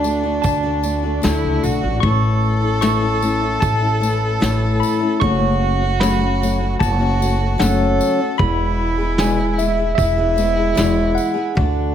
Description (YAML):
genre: acoustic folk duo or small band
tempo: 76 BPM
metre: 4/4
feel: straight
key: E mixolydian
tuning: A4 = 437 Hz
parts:
  - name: tine electric piano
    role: melody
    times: 0.0-11.9 s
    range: E5 to C#6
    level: -23 LUFS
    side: equal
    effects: medium stereo tremolo
  - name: rich cello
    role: second line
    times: 0.0-11.9 s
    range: D4 to A4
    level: -23 LUFS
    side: right 4 dB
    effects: none
  - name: picked steel-string acoustic guitar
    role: accompaniment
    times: 0.0-11.9 s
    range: E2 to G#4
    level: -21 LUFS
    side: left 4 dB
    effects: none
  - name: upright bass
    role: bass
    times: 0.0-11.9 s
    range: E1 to D2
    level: -20 LUFS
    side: equal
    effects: none
  - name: tambourine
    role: percussion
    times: 0.0-11.4 s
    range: none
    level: -34 LUFS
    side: left 4 dB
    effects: none
  - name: soft brush drum kit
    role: drums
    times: 0.4-11.8 s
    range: kick drum, snare drum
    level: -22 LUFS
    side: equal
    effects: none
room: light reverb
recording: none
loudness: -15 LUFS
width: side -9 dB against mid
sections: 0.0-11.9 A section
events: none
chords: 0.0 D; 2.0 A; 5.2 F#m; 8.4 E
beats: 0.44 1.24 | 2.03 2.82 3.62 4.41 | 5.21 6.00 6.80 7.59 | 8.39 9.18 9.98 10.77 | 11.57